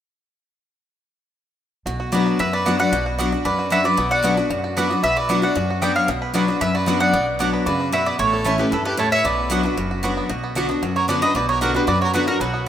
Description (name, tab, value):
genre	bluegrass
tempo	228 BPM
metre	4/4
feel	straight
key	B minor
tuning	A4 = 439 Hz
part	picked steel-string acoustic guitar	accompaniment	1.9-12.7 s	F#2 to F#4	-22 LUFS	left 2 dB	none
part	bluegrass banjo	arpeggios	1.9-12.7 s	F#3 to B4	-29 LUFS	right 4 dB	none
part	upright bass	bass	1.9-12.7 s	F#1 to F#2	-30 LUFS	right 1 dB	none
part	mandolin	melody	2.1-12.7 s	A4 to G5	-22 LUFS	right 1 dB	none
part	clear fiddle	second line	2.1-12.7 s	E4 to D5	-27 LUFS	left 1 dB	none
part	mandolin	stabs	2.1-12.2 s	A3 to A5	-29 LUFS	right 5 dB	none
room	moderate lush hall reverb, RT60 2.7 s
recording	rough home demo mix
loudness	-17 LUFS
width	side -10 dB against mid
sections	1.9-10.3 A section; 10.3-12.7 B section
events	none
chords	1.9 Bm; 8.2 A; 9.2 Bm